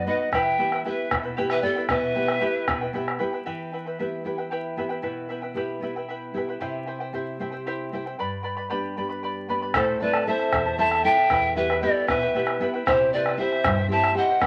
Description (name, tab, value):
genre	andean folk, Andean ensemble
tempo	77 BPM (dotted quarters)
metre	6/8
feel	straight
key	E minor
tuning	A4 = 440 Hz
part	polished pan flute	melody	0.0-2.9, 9.7-14.5 s	C5 to A5	-26 LUFS	equal	none
part	breathy pan flute	second line	0.0-2.9, 9.7-14.5 s	G4 to E5	-31 LUFS	equal	none
part	charango	accompaniment	0.0-14.5 s	E4 to B5	-32 LUFS	equal	none
part	nylon-string guitar	accompaniment	0.0-14.5 s	E2 to A4	-33 LUFS	equal	none
part	bombo	percussion	0.3-3.3, 9.7-14.5 s	none	-29 LUFS	equal	none
room	moderate studio reverb, RT60 0.6 s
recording	vinyl crackle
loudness	-25 LUFS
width	mono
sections	0.0-3.5 A section; 3.5-9.7 B section; 9.7-14.5 C section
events	none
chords	0.3 Em; 6.6 C; 8.2 G; 9.7 Am; 11.3 Em; 12.9 C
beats	| 0.33 1.11 | 1.90 2.68 | 3.46 4.25 | 5.04 5.82 | 6.61 7.39 | 8.18 8.96 | 9.74 10.53 | 11.31 12.09 | 12.86 13.64 | 14.42